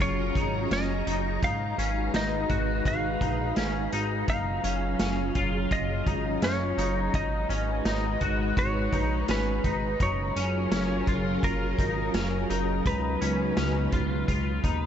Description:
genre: dream pop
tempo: 84 BPM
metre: 4/4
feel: straight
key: F# major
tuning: A4 = 441 Hz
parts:
  - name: clean lap steel guitar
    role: melody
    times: 0.0-14.9 s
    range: A#4 to E#5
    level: -32 LUFS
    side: right 1 dB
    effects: tape echo
  - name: soft string machine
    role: sustained chords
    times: 0.0-14.9 s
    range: C#3 to A#5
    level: -31 LUFS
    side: equal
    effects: ensemble chorus
  - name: twangy electric guitar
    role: arpeggios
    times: 0.0-14.9 s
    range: C#4 to F#4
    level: -33 LUFS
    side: left 4 dB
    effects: ensemble chorus, tape echo
  - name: chorused synth bass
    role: bass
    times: 0.0-14.9 s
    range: F#1 to D#2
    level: -31 LUFS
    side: equal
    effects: none
  - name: vintage drum kit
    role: drums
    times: 0.0-14.8 s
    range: hi-hat, kick drum, snare drum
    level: -31 LUFS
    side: equal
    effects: none
room: light reverb, studio reverb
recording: nothing above 7.8 kHz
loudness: -25 LUFS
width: side -9 dB against mid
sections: 0.0-14.9 A section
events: none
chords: 0.0 F#maj7; 1.4 G#m7; 4.3 F#maj7; 7.1 G#m7; 10.0 F#maj7; 12.9 C#7sus4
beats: 0.00 0.71 | 1.43 2.14 2.85 3.57 | 4.28 5.00 5.71 6.43 | 7.14 7.86 8.57 9.28 | 10.00 10.71 11.43 12.14 | 12.86 13.57 14.28

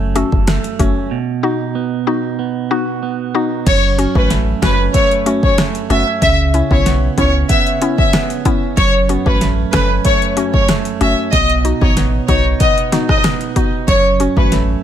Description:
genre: dancehall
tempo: 94 BPM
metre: 4/4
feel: straight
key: F# dorian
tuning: A4 = 441 Hz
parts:
  - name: clean electric guitar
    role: arpeggios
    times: 0.0-14.8 s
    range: F#2 to A4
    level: -20 LUFS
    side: right 9 dB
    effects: warbly pitch drift
  - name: punchy sub bass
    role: bass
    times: 0.0-14.8 s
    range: F#1 to C#2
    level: -17 LUFS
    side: equal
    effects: none
  - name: mallet-like synth pluck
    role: accompaniment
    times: 0.2-14.5 s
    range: A3 to A4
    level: -20 LUFS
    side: left 5 dB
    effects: chorus, sidechain pumping
  - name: deep house drum kit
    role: drums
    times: 0.2-14.7 s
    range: crash cymbal, hi-hat, kick drum, rim click, snare drum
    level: -16 LUFS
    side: equal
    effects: none
  - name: rich chamber violin section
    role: melody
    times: 3.7-14.5 s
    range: B4 to E5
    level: -17 LUFS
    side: left 1 dB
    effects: ping-pong delay
room: little or no reverb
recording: none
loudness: -12 LUFS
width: side -10 dB against mid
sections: 0.0-3.7 A section; 3.7-14.8 B section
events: break 1.1-3.7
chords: 0.0 F#m; 1.1 B; 3.7 F#m; 6.2 C#m7; 8.8 F#m; 11.3 B; 13.9 F#m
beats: 0.47 | 1.11 1.75 2.39 3.03 | 3.67 4.30 4.94 5.58 | 6.22 6.86 7.50 8.13 | 8.77 9.41 10.05 10.69 | 11.33 11.96 12.60 13.24 | 13.88 14.52

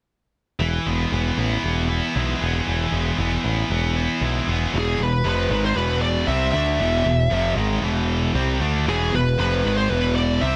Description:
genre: metal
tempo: 116 BPM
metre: 4/4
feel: straight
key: E phrygian dominant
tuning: A4 = 440 Hz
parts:
  - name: scooped high-gain guitar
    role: riff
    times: 0.6-10.6 s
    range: E2 to E4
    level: -29 LUFS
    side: equal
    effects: distortion
  - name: scooped high-gain guitar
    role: riff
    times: 0.6-10.6 s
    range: E2 to G#4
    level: -27 LUFS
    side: equal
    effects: distortion
  - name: growling picked electric bass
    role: bass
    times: 0.6-10.6 s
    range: E1 to D2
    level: -26 LUFS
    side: equal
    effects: overdrive
  - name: high-gain lead guitar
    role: melody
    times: 4.8-10.6 s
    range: G#4 to E5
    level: -26 LUFS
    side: equal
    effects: distortion
room: light reverb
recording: none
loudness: -22 LUFS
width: mono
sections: 0.6-4.7 A section; 4.7-10.6 B section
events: none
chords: 0.6 E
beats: | 0.61 1.12 1.64 2.16 | 2.67 3.19 3.71 4.22 | 4.74 5.25 5.77 6.28 | 6.80 7.31 7.83 8.35 | 8.87 9.38 9.90 10.42

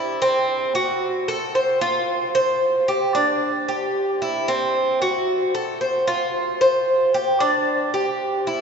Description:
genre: latin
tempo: 113 BPM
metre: 4/4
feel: straight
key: unclear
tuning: A4 = 440 Hz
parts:
  - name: Cuban tres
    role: solo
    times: 0.0-8.6 s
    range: C4 to C5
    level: -19 LUFS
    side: equal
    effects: none
room: wet cathedral reverb, RT60 6.6 s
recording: recorded in a church or concert hall, nothing above 7.8 kHz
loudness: -18 LUFS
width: side -6 dB against mid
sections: 0.0-8.6 A section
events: none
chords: none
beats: 0.49 | 1.02 1.55 2.08 2.62 | 3.15 3.68 4.21 4.75 | 5.28 5.81 6.34 6.88 | 7.41 7.94 8.47

